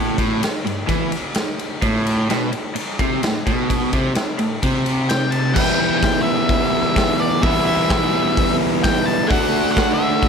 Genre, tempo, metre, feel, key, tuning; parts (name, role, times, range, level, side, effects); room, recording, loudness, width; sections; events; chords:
garage rock duo or trio; 128 BPM; 4/4; straight; E minor; A4 = 442 Hz
overdriven electric guitar; riff; 0.0-10.3 s; E2 to F#4; -19 LUFS; equal
raw garage drum kit; drums; 0.2-10.3 s; crash cymbal, hi-hat, kick drum, ride cymbal, snare drum; -21 LUFS; equal
octave-fuzz lead guitar; melody; 5.1-10.3 s; D5 to A5; -22 LUFS; left 3 dB; distortion
studio ambience; -16 LUFS; side -6 dB against mid
0.0-5.6 A section; 5.6-10.3 B section
0.0 Gsus2; 1.8 Amadd9; 5.6 Em; 9.3 D